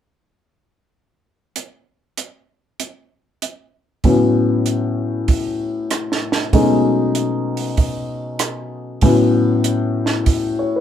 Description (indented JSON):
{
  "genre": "jazz piano trio",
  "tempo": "96 BPM",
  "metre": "4/4",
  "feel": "swing 67% on 8ths",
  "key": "unclear",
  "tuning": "A4 = 440 Hz",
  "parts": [
    { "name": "compact cocktail drum kit", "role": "drums", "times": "1.6-10.5 s", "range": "hi-hat, kick drum, rim click, snare drum", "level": "-19 LUFS", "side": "right 3 dB", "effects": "none" },
    { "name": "dark baby grand piano", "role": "melody", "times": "4.0-10.8 s", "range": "A2 to C#5", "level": "-17 LUFS", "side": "left 2 dB", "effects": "none" }
  ],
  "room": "wet small room reverb, RT60 0.5 s",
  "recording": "heard from further back in the room",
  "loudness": "-15 LUFS",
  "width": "side -9 dB against mid",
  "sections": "1.6-4.0 A section; 4.0-10.8 B section",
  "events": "none",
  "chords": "1.6 N.C.; 4.0 A69; 6.5 B13; 9.0 A69"
}